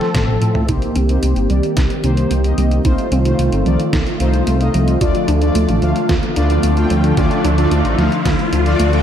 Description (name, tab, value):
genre	synthwave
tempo	111 BPM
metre	4/4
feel	straight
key	unclear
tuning	A4 = 440 Hz
part	warm analog pad	sustained chords	0.0-9.0 s	D3 to A4	-20 LUFS	right 1 dB	chorus, sidechain pumping
part	detuned 8-bit digital drum machine	drums	0.0-9.0 s	hi-hat, snare drum, toms	-24 LUFS	equal	overdrive
part	dark detuned saw bass	bass	0.1-9.0 s	G1 to A2	-16 LUFS	equal	sidechain pumping
part	electronic kick drum	drums	0.1-8.4 s	none	-19 LUFS	equal	overdrive
part	warbly dusty pluck	arpeggios	0.7-9.0 s	F3 to F4	-23 LUFS	right 1 dB	chorus, analog delay
part	analog synth brass	stabs	0.7-9.0 s	A3 to G5	-22 LUFS	left 3 dB	chorus, analog delay
part	riser	sound effects	4.7-9.0 s	none	-26 LUFS	left 1 dB	none
room	moderate plate reverb, RT60 2.0 s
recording	dreamy mix soaked in reverb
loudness	-13 LUFS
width	side -9 dB against mid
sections	0.7-9.0 A section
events	drum fill 0.1-0.7; filter sweep on analog synth pad 0.7-9.0; filter sweep on analog polysynth 0.7-9.0; riser 4.7-9.0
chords	0.0 F/A; 0.7 Cm7; 2.9 F7; 5.0 Dm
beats	0.15 | 0.69 1.23 1.77 2.31 | 2.85 3.39 3.93 4.47 | 5.01 5.55 6.09 6.63 | 7.17 7.71 8.26 8.80